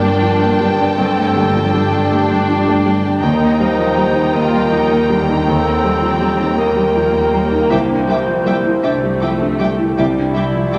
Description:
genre	cinematic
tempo	53 BPM (dotted quarters)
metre	6/8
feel	rubato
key	unclear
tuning	A4 = 440 Hz
part	mellow hollow alto flute	melody	0.0-10.8 s	G4 to D5	-22 LUFS	equal	none
part	rich studio violin section	melody	0.0-10.8 s	A5 to D6	-29 LUFS	equal	none
part	rich studio violin section	second line	0.0-10.8 s	E5 to G5	-25 LUFS	equal	none
part	felt-muted upright piano	accompaniment	0.0-10.8 s	C2 to E4	-20 LUFS	equal	none
part	rich studio viola section	accompaniment	0.0-10.8 s	D3 to F4	-25 LUFS	equal	none
part	concert harp	arpeggios	0.0-10.8 s	G2 to A5	-25 LUFS	equal	none
part	rich studio double bass section	bass	0.0-10.8 s	G1 to Eb2	-30 LUFS	equal	none
part	warm studio cello section	bass	0.0-10.8 s	C2 to G2	-25 LUFS	equal	none
room	wet scoring stage reverb, RT60 2.0 s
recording	none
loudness	-15 LUFS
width	mono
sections	0.0-10.8 A section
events	none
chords	0.0 Gmadd9; 3.2 Eb; 7.7 Cadd9

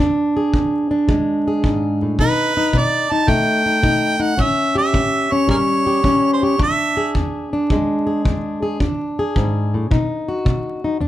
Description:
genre	acoustic country blues, solo or duo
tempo	109 BPM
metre	4/4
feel	swing 67% on 8ths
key	E mixolydian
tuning	A4 = 440 Hz
part	fingerpicked plugged-in steel-string acoustic guitar	accompaniment	0.0-11.1 s	E2 to G#4	-18 LUFS	left 1 dB	none
part	kick drum	drums	0.5-10.6 s	none	-21 LUFS	equal	none
part	clear harmonica	melody	2.2-7.1 s	G#4 to A5	-18 LUFS	right 2 dB	plate reverb
room	moderate studio reverb, RT60 0.5 s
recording	vinyl crackle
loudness	-16 LUFS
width	side -13 dB against mid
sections	0.0-11.0 A section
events	none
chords	0.0 E7; 2.2 B7; 4.4 A7; 6.6 E7; 9.9 B

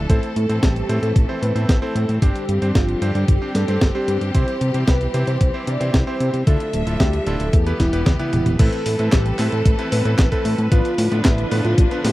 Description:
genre	italo disco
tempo	113 BPM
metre	4/4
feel	straight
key	A minor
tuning	A4 = 440 Hz
part	clear studio string section	sustained chords	0.0-12.1 s	D3 to E5	-28 LUFS	left 1 dB	none
part	clear electric grand piano	stabs	0.0-12.1 s	B3 to C5	-28 LUFS	right 1 dB	none
part	fat analog bass	bass	0.0-12.1 s	D1 to C3	-21 LUFS	equal	none
part	wide unison lead	melody	0.1-12.1 s	E4 to D5	-25 LUFS	equal	tape echo
part	clean 12-bit digital drum machine	drums	0.1-12.1 s	crash cymbal, handclaps, hi-hat, snare drum, toms	-23 LUFS	equal	none
part	electronic kick drum	drums	0.1-11.9 s	none	-17 LUFS	equal	none
room	little or no reverb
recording	dry, close 1970s-style studio recording, vinyl crackle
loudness	-16 LUFS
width	side -17 dB against mid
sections	0.0-8.6 A section; 8.6-12.1 B section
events	drum fill 7.8-8.6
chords	0.1 Am; 2.2 Gsus4; 4.3 C; 6.5 Dmadd9; 7.5 Em; 8.6 Amadd9; 10.7 Bdim/A

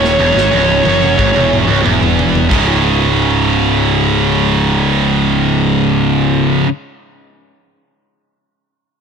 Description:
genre	heavy metal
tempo	90 BPM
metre	4/4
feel	straight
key	C# minor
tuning	A4 = 440 Hz
part	bluesy overdriven lead guitar	melody	0.0-1.8 s	C#5	-15 LUFS	equal	distortion
part	scooped high-gain guitar	riff	0.0-6.7 s	C#2 to C#3	-17 LUFS	left 13 dB	distortion
part	tight distorted guitar	riff	0.0-6.7 s	C#2 to C#3	-14 LUFS	right 12 dB	distortion
part	fuzz picked electric bass	bass	0.0-6.6 s	C#1 to G#1	-18 LUFS	left 1 dB	overdrive
part	modern studio drum kit	drums	0.0-2.7 s	crash cymbal, kick drum, snare drum, toms	-19 LUFS	left 1 dB	none
room	little or no reverb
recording	blown-out, overdriven recording, overdrive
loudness	-10 LUFS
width	side -6 dB against mid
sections	0.0-2.5 A section; 2.5-5.2 B section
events	drum fill 0.0-2.5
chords	0.0 C#m; 2.5 C#5

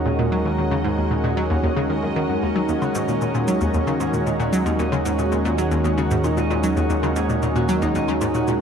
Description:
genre	ambient, sequencer-driven space music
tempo	114 BPM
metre	4/4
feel	straight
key	Eb minor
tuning	A4 = 440 Hz
part	lush unison pad	sustained chords	0.0-8.6 s	Eb3 to Bb4	-23 LUFS	equal	chorus
part	concert harp	arpeggios	0.0-8.6 s	Eb4 to Eb5	-28 LUFS	right 2 dB	auto-pan, ping-pong delay
part	analog drone	bass	0.0-8.6 s	Eb2	-27 LUFS	equal	chorus
part	bubbling stepped-filter texture	texture	0.0-8.6 s	Eb5	-36 LUFS	right 3 dB	chorus, built-in reverb
part	analog pluck	riff	0.1-8.5 s	Eb2 to Gb3	-23 LUFS	left 1 dB	chorus, ping-pong delay
part	cabasa and woodblock	percussion	2.7-8.6 s	none	-39 LUFS	left 2 dB	ping-pong delay
room	wet plate reverb, RT60 2.5 s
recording	dark, warm production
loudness	-19 LUFS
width	side -7 dB against mid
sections	0.0-8.6 A section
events	fade-in on harp 0.0-8.6; fade-in on synth texture 0.0-8.6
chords	0.0 Ebm

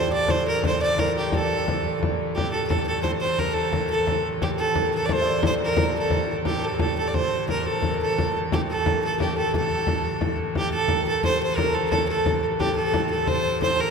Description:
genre	medieval dance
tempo	117 BPM (dotted quarters)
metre	6/8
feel	straight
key	A phrygian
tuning	A4 = 440 Hz
part	bright fiddle	melody	0.0-13.9 s	G4 to D5	-25 LUFS	right 2 dB	none
part	concert harp	second line	0.0-13.9 s	G4 to E5	-27 LUFS	left 1 dB	none
part	pipe organ, clarinet reed	drone	0.0-13.9 s	A2 to E3	-33 LUFS	equal	none
part	frame drum	percussion	0.3-13.8 s	none	-26 LUFS	left 2 dB	none
room	wet cathedral reverb, RT60 5.4 s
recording	recorded in a church or concert hall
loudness	-21 LUFS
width	side -5 dB against mid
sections	0.0-2.4 A section; 2.4-10.6 B section; 10.6-13.9 B section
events	none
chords	none

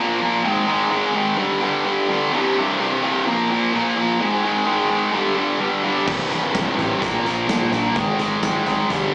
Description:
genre	classic rock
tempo	128 BPM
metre	4/4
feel	straight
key	unclear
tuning	A4 = 439 Hz
part	tight distorted guitar	riff	0.0-9.1 s	C2 to Bb3	-17 LUFS	equal	distortion
part	growling picked electric bass	bass	6.1-9.1 s	C1 to Bb1	-27 LUFS	equal	overdrive
part	big rock drum kit	drums	6.1-9.0 s	crash cymbal, hi-hat, kick drum, snare drum, tambourine	-26 LUFS	equal	none
room	light reverb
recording	live gig heard through the venue's PA, club reverb, small speaker sound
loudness	-17 LUFS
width	side -26 dB against mid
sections	0.0-9.1 A section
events	none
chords	0.4 Ab5; 1.4 G5; 2.3 C5; 3.3 Bb5; 4.2 Ab5; 5.1 G5; 6.1 C5; 7.0 Bb5; 8.0 Ab5

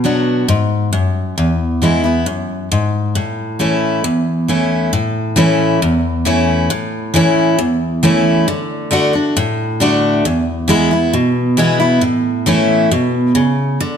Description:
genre	country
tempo	135 BPM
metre	4/4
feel	straight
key	A major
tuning	A4 = 440 Hz
part	picked steel-string acoustic guitar	solo	0.0-14.0 s	E2 to F#4	-13 LUFS	equal	none
room	moderate recital hall reverb, RT60 1.6 s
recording	close, detailed microphones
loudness	-13 LUFS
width	side -8 dB against mid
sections	0.0-4.9 A section; 4.9-14.0 B section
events	none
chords	0.0 Bm; 1.4 E; 3.2 A; 8.5 D; 10.3 E; 12.0 A

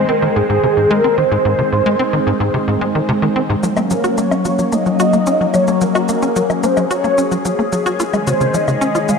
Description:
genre	ambient, sequencer-driven space music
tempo	110 BPM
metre	4/4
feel	straight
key	unclear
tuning	A4 = 440 Hz
part	mellow horn-like synth lead	melody	0.0-9.2 s	Ab4 to F5	-18 LUFS	equal	tremolo, ensemble chorus, ping-pong delay
part	phased analog pad	sustained chords	0.0-9.2 s	Eb3 to C5	-18 LUFS	left 1 dB	phaser, chorus
part	tight sequencer bass	riff	0.0-9.2 s	Ab2 to Gb4	-18 LUFS	equal	wide subtle chorus, ping-pong delay
part	cabasa and woodblock	percussion	3.6-9.2 s	none	-26 LUFS	left 4 dB	ping-pong delay
room	wet lush hall reverb, RT60 3.0 s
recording	none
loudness	-13 LUFS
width	side -5 dB against mid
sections	0.0-3.6 A section; 3.6-9.2 B section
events	none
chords	0.0 Ab; 3.6 Gbadd9; 8.0 Dbsus2

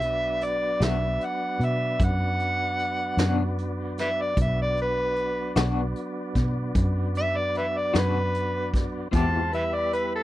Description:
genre	slow blues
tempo	50 BPM (dotted quarters)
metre	12/8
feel	straight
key	B minor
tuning	A4 = 440 Hz
part	overdriven harmonica	melody	0.0-10.2 s	A4 to A5	-26 LUFS	equal	none
part	tonewheel organ	sustained chords	0.0-10.2 s	F#3 to C5	-32 LUFS	right 1 dB	slow rotary speaker
part	vintage muted fingered electric bass	bass	0.0-10.2 s	B1 to B2	-28 LUFS	equal	none
part	vintage brush drum kit	drums	0.0-10.1 s	hi-hat, kick drum, snare drum	-26 LUFS	equal	none
part	electric guitar through a small old amp	accompaniment	0.8-9.4 s	B2 to G4	-28 LUFS	left 4 dB	tremolo
room	little or no reverb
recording	none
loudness	-23 LUFS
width	side -15 dB against mid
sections	0.0-10.2 A section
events	none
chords	0.0 Bm; 9.1 Em

